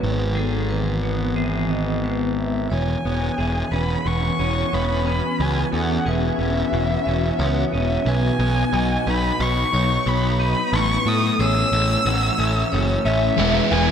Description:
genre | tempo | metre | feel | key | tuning
rock | 90 BPM | 4/4 | straight | E major | A4 = 439 Hz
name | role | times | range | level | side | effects
granular cloud pad | sustained chords | 0.0-13.9 s | D#3 to D#6 | -27 LUFS | left 2 dB | built-in reverb, phaser
clean electric guitar | arpeggios | 0.0-13.9 s | E2 to G#4 | -27 LUFS | left 2 dB | ensemble chorus, analog delay
vibraphone with hard mallets | arpeggios | 0.0-13.9 s | A4 to F#5 | -30 LUFS | right 5 dB | analog delay
fuzz picked electric bass | bass | 0.0-13.9 s | E1 to A2 | -22 LUFS | equal | overdrive
dark violin | melody | 2.4-13.9 s | E5 to E6 | -24 LUFS | left 1 dB | analog delay
sludgy distorted guitar | riff | 13.4-13.9 s | E3 to E4 | -22 LUFS | left 12 dB | overdrive
sludgy distorted guitar | riff | 13.4-13.9 s | E3 to E4 | -21 LUFS | right 12 dB | overdrive
room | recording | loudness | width
moderate lush hall reverb, RT60 2.0 s | dreamy mix soaked in reverb | -18 LUFS | side -8 dB against mid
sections
0.0-2.7 A section; 2.7-13.4 B section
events
build-up 2.7-13.4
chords
0.0 Emaj7/G#; 2.7 E6; 8.1 B; 10.7 Amaj7; 13.4 Emaj7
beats
| 0.02 0.69 1.37 2.04 | 2.71 3.38 4.05 4.72 | 5.39 6.06 6.73 7.40 | 8.06 8.73 9.40 10.06 | 10.73 11.40 12.06 12.72 | 13.39

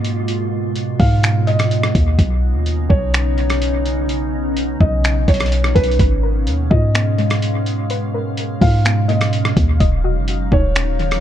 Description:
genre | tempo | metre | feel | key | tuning
hip hop, atmospheric cloud-rap | 126 BPM | 4/4 | half-time | G# dorian | A4 = 441 Hz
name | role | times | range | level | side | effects
felt-muted upright piano | melody | 0.0-11.2 s | B4 to E#5 | -24 LUFS | equal | dub echo
glassy FM pad | sustained chords | 0.0-11.2 s | B2 to E#5 | -23 LUFS | right 1 dB | ensemble chorus, built-in reverb, sidechain pumping
warm 808-style bass | bass | 0.0-11.2 s | D#1 to G#2 | -17 LUFS | equal | none
lo-fi sampler-style drum kit | drums | 0.0-11.2 s | finger snaps, hi-hat, kick drum, rim click | -18 LUFS | equal | overdrive, vintage 12-bit sampler grit
soft round pluck | arpeggios | 6.0-11.2 s | D#3 to D#5 | -27 LUFS | left 6 dB | chorus, dub echo
room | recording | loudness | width
little or no reverb | echo-heavy mix | -14 LUFS | side -11 dB against mid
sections
0.0-11.2 A section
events
none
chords
0.0 G#m6; 2.2 Badd9; 6.0 G#m69; 9.8 D#m9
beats
| 0.28 0.76 1.23 1.71 | 2.19 2.66 3.14 3.61 | 4.09 4.57 5.04 5.52 | 6.00 6.47 6.95 7.42 | 7.90 8.38 8.85 9.33 | 9.80 10.28 10.76

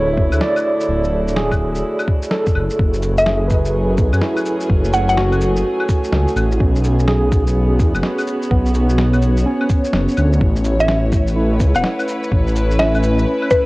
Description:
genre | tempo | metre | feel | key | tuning
future garage | 126 BPM | 4/4 | swing 64% on 16ths | F# minor | A4 = 440 Hz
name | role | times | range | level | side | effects
overdriven tine electric piano | accompaniment | 0.0-13.7 s | B3 to E5 | -21 LUFS | right 1 dB | fast tremolo, sidechain pumping, cassette tape, analog delay
warm studio string section | sustained chords | 0.0-13.7 s | D3 to C#5 | -24 LUFS | left 1 dB | sidechain pumping, cassette tape
dark detuned saw bass | bass | 0.0-13.3 s | D1 to F#2 | -17 LUFS | equal | tube saturation, sidechain pumping
electronic kick drum | drums | 0.2-13.6 s | none | -16 LUFS | equal | cassette tape
electronic shaker, claves, snare drum and cabasa | drums | 0.3-13.6 s | none | -25 LUFS | equal | cassette tape
mallet-like synth pluck | melody | 3.2-5.7, 10.8-13.6 s | B4 to F#5 | -19 LUFS | equal | chorus, cassette tape, analog delay
room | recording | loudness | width
light reverb | home recording on cassette | -14 LUFS | side -21 dB against mid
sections
0.0-2.8 A section; 2.8-13.7 B section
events
band accent 2.3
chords
0.0 Dmaj9; 2.8 F#m9; 6.6 B7sus2; 10.4 A69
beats
0.41 | 0.89 1.36 1.84 2.31 | 2.79 3.27 3.74 4.22 | 4.70 5.17 5.65 6.12 | 6.60 7.08 7.55 8.03 | 8.51 8.98 9.46 9.93 | 10.41 10.89 11.36 11.84 | 12.31 12.79 13.27

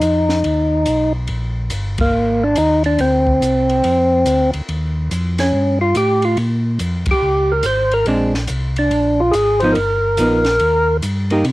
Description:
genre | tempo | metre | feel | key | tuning
soul jazz organ trio | 142 BPM | 4/4 | swing 65% on 8ths | Bb mixolydian | A4 = 438 Hz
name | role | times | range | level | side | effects
percussive tonewheel organ | melody | 0.0-11.0 s | Bb3 to C5 | -15 LUFS | equal | slow rotary speaker, overdrive, cassette tape
mellow tonewheel organ | bass | 0.0-11.5 s | G1 to C3 | -20 LUFS | equal | slow rotary speaker
compact cocktail drum kit | drums | 0.0-11.5 s | hi-hat, kick drum, ride cymbal, snare drum | -27 LUFS | equal | none
hollow-body jazz guitar | accompaniment | 8.1-11.4 s | F3 to G4 | -16 LUFS | right 1 dB | cassette tape
room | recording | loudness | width
little or no reverb | home recording on cassette | -14 LUFS | side -18 dB against mid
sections
0.0-11.5 A section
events
band accent 1.9, 7.0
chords
0.0 Ebsus2; 1.3 Bb9; 4.7 Eb9; 8.1 Bb9; 9.8 G7alt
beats
0.03 0.45 0.88 | 1.30 1.72 2.15 2.57 | 2.99 3.42 3.84 4.26 | 4.69 5.11 5.53 5.96 | 6.38 6.80 7.22 7.65 | 8.07 8.49 8.92 9.34 | 9.76 10.18 10.61 11.03 | 11.45

